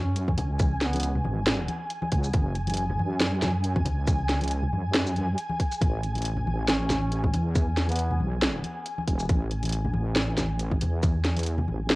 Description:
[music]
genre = deep dubstep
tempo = 138 BPM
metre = 4/4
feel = swing 55% on 16ths, half-time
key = F# minor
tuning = A4 = 440 Hz
[part]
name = mellow duduk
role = melody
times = 0.0-1.2, 6.7-8.2 s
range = B3 to C#4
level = -36 LUFS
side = equal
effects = cassette tape, dub echo
[part]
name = deep soft wobble bass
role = bass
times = 0.0-12.0 s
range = E1 to F#2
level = -27 LUFS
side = equal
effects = chorus
[part]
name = flickering grainy texture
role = texture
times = 0.0-12.0 s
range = G#5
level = -35 LUFS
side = equal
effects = built-in reverb
[part]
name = garage drum kit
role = drums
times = 0.2-12.0 s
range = hi-hat, shaker, snare drum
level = -27 LUFS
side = equal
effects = overdrive, cassette tape
[part]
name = electronic kick drum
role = drums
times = 0.3-11.1 s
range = none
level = -24 LUFS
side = equal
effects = overdrive, cassette tape
[part]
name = congas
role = percussion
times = 0.3-11.8 s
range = none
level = -34 LUFS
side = left 2 dB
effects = none
[sound]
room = light reverb, digital ambience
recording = home recording on cassette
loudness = -24 LUFS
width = side -21 dB against mid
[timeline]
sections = 0.0-12.0 A section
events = none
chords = 0.0 F#5; 5.8 A5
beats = 0.16 | 0.60 1.03 1.47 1.90 | 2.34 2.77 3.21 3.64 | 4.08 4.51 4.95 5.38 | 5.82 6.25 6.68 7.12 | 7.55 7.99 8.42 8.86 | 9.29 9.73 10.16 10.60 | 11.03 11.47 11.90

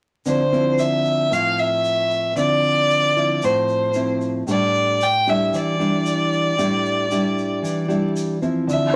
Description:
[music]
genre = bossa nova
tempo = 114 BPM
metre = 4/4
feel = straight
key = D minor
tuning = A4 = 440 Hz
[part]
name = warm fiddle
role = melody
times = 0.3-9.0 s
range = C5 to G5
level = -22 LUFS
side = equal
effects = none
[part]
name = nylon-string guitar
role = accompaniment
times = 0.3-9.0 s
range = A2 to E4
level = -24 LUFS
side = equal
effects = none
[part]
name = egg shaker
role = percussion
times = 0.3-8.9 s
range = none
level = -42 LUFS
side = equal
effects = none
[sound]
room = wet studio reverb, RT60 0.6 s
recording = vinyl crackle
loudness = -20 LUFS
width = mono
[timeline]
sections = 0.3-8.7 A section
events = none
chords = 0.3 Dm9; 4.5 A7sus4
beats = | 0.26 0.79 1.31 1.84 | 2.37 2.89 3.42 3.95 | 4.47 5.00 5.53 6.05 | 6.58 7.11 7.63 8.16 | 8.68

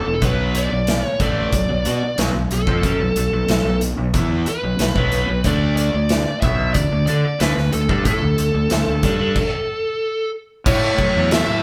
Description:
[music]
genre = classic rock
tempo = 92 BPM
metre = 4/4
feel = straight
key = B minor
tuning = A4 = 440 Hz
[part]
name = bluesy overdriven lead guitar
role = melody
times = 0.0-11.6 s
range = A4 to E5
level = -25 LUFS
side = equal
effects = distortion
[part]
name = cranked stack guitar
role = riff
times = 0.0-11.6 s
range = E2 to A4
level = -29 LUFS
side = equal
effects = overdrive, phaser
[part]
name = crunchy overdriven guitar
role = riff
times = 0.0-11.6 s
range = E2 to A4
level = -27 LUFS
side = equal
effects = none
[part]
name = fuzz fingered electric bass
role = bass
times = 0.0-11.6 s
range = E1 to D3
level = -24 LUFS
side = equal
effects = overdrive
[part]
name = big rock drum kit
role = drums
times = 0.2-11.5 s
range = crash cymbal, hi-hat, kick drum, snare drum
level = -24 LUFS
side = equal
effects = none
[part]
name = bright tonewheel organ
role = sustained chords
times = 10.7-11.6 s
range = none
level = barely audible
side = none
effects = none
[sound]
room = moderate studio reverb, RT60 0.8 s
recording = band playing live in one room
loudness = -19 LUFS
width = mono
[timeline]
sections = 0.0-10.7 A section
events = stop 9.4-10.7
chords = 0.2 Bm; 5.4 D5; 10.7 A6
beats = | 0.22 0.88 1.53 2.18 | 2.83 3.49 4.14 4.79 | 5.45 6.10 6.75 7.40 | 8.06 8.71 9.36 10.01 | 10.66 11.32

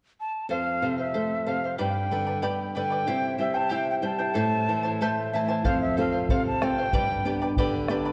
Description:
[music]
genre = andean folk, Andean ensemble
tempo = 93 BPM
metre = 2/4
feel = straight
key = unclear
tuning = A4 = 440 Hz
[part]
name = quena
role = melody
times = 0.2-7.6 s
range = E5 to A5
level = -31 LUFS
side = equal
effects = none
[part]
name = charango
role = accompaniment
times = 0.5-8.1 s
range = E4 to B5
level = -32 LUFS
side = equal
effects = none
[part]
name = flamenco guitar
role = accompaniment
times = 0.5-8.1 s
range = F2 to A4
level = -31 LUFS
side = equal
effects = none
[part]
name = bombo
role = percussion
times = 5.6-8.0 s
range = none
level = -31 LUFS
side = equal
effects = none
[sound]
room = wet concert hall reverb, RT60 1.9 s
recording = worn, warbling old tape, cassette tape, warbly pitch drift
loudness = -26 LUFS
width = mono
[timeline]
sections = 0.5-5.6 A section; 5.6-8.1 B section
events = none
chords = 0.5 F; 1.8 G; 3.1 C; 4.4 Am; 5.6 F; 6.9 G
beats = | 0.50 1.14 | 1.79 2.43 | 3.07 3.72 | 4.36 5.00 | 5.64 6.29 | 6.93 7.57

